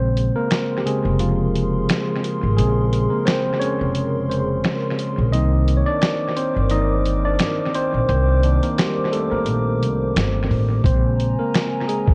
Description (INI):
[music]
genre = lo-fi hip hop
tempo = 87 BPM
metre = 4/4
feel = swing 56% on 16ths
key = unclear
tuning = A4 = 440 Hz
[part]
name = tine electric piano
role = accompaniment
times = 0.0-12.1 s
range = Db3 to Eb5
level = -24 LUFS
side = equal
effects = cassette tape
[part]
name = dark analog pad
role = sustained chords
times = 0.4-12.1 s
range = C4 to D6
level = -32 LUFS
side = equal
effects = chorus
[part]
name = upright bass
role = bass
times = 0.0-12.1 s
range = F1 to C2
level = -22 LUFS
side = equal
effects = none
[part]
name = dusty soul sampler-style drum kit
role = drums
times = 0.2-12.1 s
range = finger snaps, hi-hat, kick drum, snare drum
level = -25 LUFS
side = equal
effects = vintage 12-bit sampler grit, analog delay
[sound]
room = light reverb, digital ambience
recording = echo-heavy mix, cassette tape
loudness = -20 LUFS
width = mono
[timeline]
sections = 0.0-12.1 A section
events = break 0.0-10.8; tine electric piano solo 0.0-12.1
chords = 0.0 Bbm9; 5.3 Cm9; 10.8 Bbm9